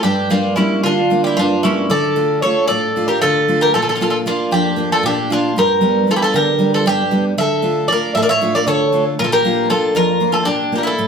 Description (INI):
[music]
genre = greek folk, Greek bouzouki band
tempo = 230 BPM (eighths)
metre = 7/8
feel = straight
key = unclear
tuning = A4 = 441 Hz
[part]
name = Greek bouzouki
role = melody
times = 0.0-11.1 s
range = E4 to E5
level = -16 LUFS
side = equal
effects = none
[part]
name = mandolin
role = second line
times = 0.0-11.1 s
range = C#4 to C#5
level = -21 LUFS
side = left 2 dB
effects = none
[part]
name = picked steel-string acoustic guitar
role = accompaniment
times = 0.0-11.1 s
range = F2 to F4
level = -18 LUFS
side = right 1 dB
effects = none
[sound]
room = wet studio reverb, RT60 0.9 s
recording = band playing live in one room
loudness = -13 LUFS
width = side -6 dB against mid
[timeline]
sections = 0.0-11.1 A section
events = speeding up 0.0-11.1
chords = 0.0 Gm; 1.9 Dm; 3.7 Bb; 5.6 G; 7.4 Dm; 9.2 Bb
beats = | 0.04 0.31 0.57 0.84 1.10 1.37 1.63 | 1.90 2.16 2.43 2.69 2.96 3.22 3.48 | 3.74 4.01 4.27 4.53 4.79 5.05 5.31 | 5.58 5.83 6.09 6.35 6.61 6.87 7.13 | 7.39 7.65 7.91 8.16 8.42 8.68 8.93 | 9.19 9.44 9.70 9.95 10.21 10.46 10.72 | 10.97